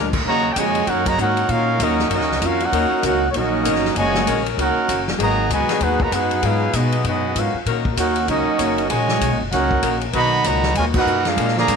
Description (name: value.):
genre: jazz, big band swing.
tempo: 194 BPM.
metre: 4/4.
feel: swing 61% on 8ths.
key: Eb minor.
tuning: A4 = 438 Hz.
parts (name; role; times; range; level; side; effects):
archtop guitar, miked and amplified; accompaniment; 0.0-11.8 s; Ab2 to Gb4; -29 LUFS; left 15 dB; none.
warm saxophone section; sustained chords; 0.0-11.8 s; Gb3 to Db5; -28 LUFS; left 12 dB; none.
upright bass; bass; 0.0-11.8 s; Gb1 to Cb3; -24 LUFS; left 1 dB; none.
swinging big-band drum kit; drums; 0.1-11.8 s; crash cymbal, hi-hat, kick drum, ride cymbal, snare drum; -25 LUFS; left 2 dB; none.
clear trumpet section; melody; 0.3-11.8 s; Cb4 to B5; -20 LUFS; equal; tape echo.
clear trombone section; second line; 0.3-11.8 s; Bb2 to Gb4; -24 LUFS; right 11 dB; none.
room: light reverb, studio ambience.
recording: 1960s-style stereo with parts hard left and right.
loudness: -16 LUFS.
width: side -6 dB against mid.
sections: 0.3-11.8 A section.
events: band accent 10.9.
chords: 0.3 Ebm7; 5.2 Abm7; 7.7 Ebm7; 10.1 Bmaj7.